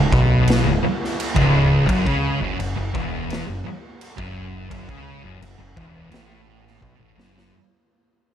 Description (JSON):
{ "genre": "stoner and doom metal", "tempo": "85 BPM", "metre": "4/4", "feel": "straight", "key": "unclear", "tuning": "A4 = 440 Hz", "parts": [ { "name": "thick fuzz guitar", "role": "riff", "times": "0.0-7.5 s", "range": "C#2 to C#3", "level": "-23 LUFS", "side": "left 6 dB", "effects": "distortion" }, { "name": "thick fuzz guitar", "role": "riff", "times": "0.0-7.5 s", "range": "C#2 to C#3", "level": "-23 LUFS", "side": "right 7 dB", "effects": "distortion" }, { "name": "growling fingered electric bass", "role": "bass", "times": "0.0-7.5 s", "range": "C#1 to C#2", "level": "-27 LUFS", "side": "equal", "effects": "overdrive" }, { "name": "raw garage drum kit", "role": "drums", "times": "0.1-7.5 s", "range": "crash cymbal, kick drum, snare drum", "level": "-25 LUFS", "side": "equal", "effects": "none" } ], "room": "moderate large studio reverb, RT60 1.2 s, studio reverb", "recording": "none", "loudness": "-17 LUFS", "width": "side -10 dB against mid", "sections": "0.0-7.5 A section", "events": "fade-out 0.0-7.5; drum fill 6.8-7.5", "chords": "0.0 C#5; 1.9 F#5" }